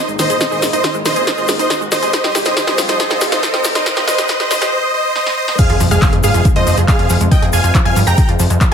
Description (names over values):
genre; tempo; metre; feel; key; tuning
uplifting trance; 139 BPM; 4/4; straight; F minor; A4 = 439 Hz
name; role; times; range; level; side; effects
big supersaw lead; melody; 0.0-8.7 s; Ab4 to Bb5; -17 LUFS; right 1 dB; sidechain pumping, tape echo
lush unison pad; sustained chords; 0.0-8.7 s; Bb2 to F4; -26 LUFS; left 1 dB; chorus, phaser, sidechain pumping
riser and impact; sound effects; 0.0-7.3 s; none; -24 LUFS; equal; none
wide unison pluck; arpeggios; 0.1-8.7 s; Eb3 to Ab4; -24 LUFS; right 3 dB; sidechain pumping, tape echo
gritty driven synth bass; bass; 0.1-8.7 s; Ab1 to G2; -18 LUFS; equal; distortion, sidechain pumping
egg shaker; percussion; 0.1-8.7 s; none; -27 LUFS; left 7 dB; none
punchy analog drum machine; drums; 0.2-8.7 s; crash cymbal, handclaps, hi-hat, snare drum; -19 LUFS; left 1 dB; none
electronic kick drum; drums; 0.4-8.7 s; none; -14 LUFS; equal; high-pass filter on kick
analog pluck; second line; 5.6-8.7 s; Eb5 to Bb5; -24 LUFS; right 1 dB; chorus, sidechain pumping, tape echo
room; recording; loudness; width
moderate digital room reverb, RT60 0.9 s, digital ambience; high-pass filter; -12 LUFS; side -7 dB against mid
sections
0.0-5.6 A section; 5.6-8.7 B section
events
build-up 0.0-5.6; drum fill 0.0-4.7, 5.2-5.6; riser 0.0-4.7; filter sweep on synth arpeggio sound 0.0-5.6; drop 5.6-8.7; impact 5.6-7.3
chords
0.0 Absus2; 2.1 Csus4; 5.6 Fm